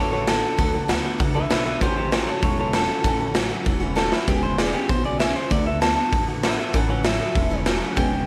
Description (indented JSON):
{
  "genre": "rockabilly",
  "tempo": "195 BPM",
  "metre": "4/4",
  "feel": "straight",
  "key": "A major",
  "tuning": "A4 = 442 Hz",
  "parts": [
    { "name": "electric guitar through a small old amp", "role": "melody", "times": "0.0-8.3 s", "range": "E4 to A5", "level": "-28 LUFS", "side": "equal", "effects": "analog delay" },
    { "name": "picked steel-string acoustic guitar", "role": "accompaniment", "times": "0.0-8.3 s", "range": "A2 to A4", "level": "-31 LUFS", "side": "equal", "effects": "none" },
    { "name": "electric guitar through a small old amp", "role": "riff", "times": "0.0-8.3 s", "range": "E2 to B3", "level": "-32 LUFS", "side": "equal", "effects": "lush chorus" },
    { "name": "upright bass", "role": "bass", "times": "0.0-8.3 s", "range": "E1 to D2", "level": "-30 LUFS", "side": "equal", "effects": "none" },
    { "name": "raw garage drum kit", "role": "drums", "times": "0.3-8.0 s", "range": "hi-hat, kick drum, snare drum", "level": "-25 LUFS", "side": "equal", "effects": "none" }
  ],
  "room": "light reverb, studio ambience",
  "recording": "none",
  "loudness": "-22 LUFS",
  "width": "mono",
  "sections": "0.0-8.3 A section",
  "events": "clean electric guitar solo 0.0-8.3; drum fill 4.0-4.3",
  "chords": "0.0 D6; 1.8 A6; 4.3 E6; 5.5 D6; 6.7 A6",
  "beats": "0.28 | 0.58 0.89 1.20 1.51 | 1.82 2.12 2.43 2.74 | 3.05 3.36 3.66 3.97 | 4.28 4.59 4.89 5.20 | 5.51 5.82 6.13 6.43 | 6.74 7.05 7.36 7.67 | 7.97"
}